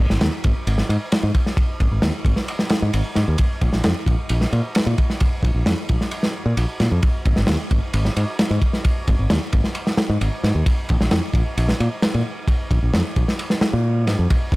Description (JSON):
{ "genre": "breakbeat, breaks", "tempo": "132 BPM", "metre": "4/4", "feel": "straight", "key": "unclear", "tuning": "A4 = 440 Hz", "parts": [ { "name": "modern bright fingered electric bass", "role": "bass", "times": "0.0-14.6 s", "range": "G#1 to A#2", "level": "-20 LUFS", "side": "equal", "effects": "none" }, { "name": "crunchy breakbeat drum kit", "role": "drums", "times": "0.1-14.6 s", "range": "kick drum, ride cymbal, snare drum", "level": "-19 LUFS", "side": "equal", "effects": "none" } ], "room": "little or no reverb", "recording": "none", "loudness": "-17 LUFS", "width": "side -21 dB against mid", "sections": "0.0-14.6 A section", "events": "kick drops out 13.4-14.3", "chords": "none", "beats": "0.21 0.67 1.12 | 1.57 2.03 2.48 2.94 | 3.39 3.85 4.30 4.75 | 5.21 5.67 6.12 6.57 | 7.03 7.48 7.94 8.39 | 8.85 9.30 9.76 10.21 | 10.66 11.12 11.57 12.03 | 12.48 12.94 13.39 13.85 | 14.30" }